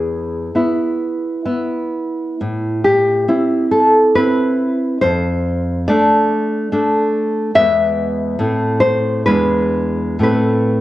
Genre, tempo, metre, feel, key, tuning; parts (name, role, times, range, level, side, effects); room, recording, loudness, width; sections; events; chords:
romantic piece for solo classical guitar; 59-73 BPM; 3/4; rubato; A minor; A4 = 440 Hz
nylon-string guitar; solo; 0.0-10.8 s; E2 to E5; -14 LUFS; equal
moderate recital hall reverb, RT60 1.5 s; worn, warbling old tape, cassette tape, warbly pitch drift; -14 LUFS; side -15 dB against mid
0.0-10.8 A section
0.0 E; 2.4 Am; 5.0 Dm/F; 7.5 E; 8.4 Am; 9.3 E7; 10.2 Am